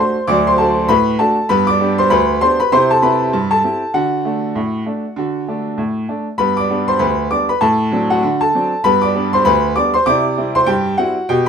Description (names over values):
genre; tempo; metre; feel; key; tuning
ragtime piano; 98 BPM; 2/4; swing 58% on 16ths; G major; A4 = 438 Hz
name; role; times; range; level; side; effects
clear baby grand piano; solo; 0.0-11.5 s; D2 to D6; -13 LUFS; equal; none
room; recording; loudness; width
moderate small room reverb, RT60 0.6 s; minimal, uncompressed stereo recording; -13 LUFS; side -7 dB against mid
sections
0.0-11.5 A section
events
none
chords
0.0 D7; 1.5 G; 2.7 C; 3.9 D; 6.4 G; 7.6 D7/A; 8.8 G; 10.1 C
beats
| 0.28 0.89 | 1.50 2.11 | 2.72 3.33 | 3.95 4.56 | 5.17 5.79 | 6.40 7.01 | 7.62 8.23 | 8.84 9.45 | 10.06 10.67 | 11.28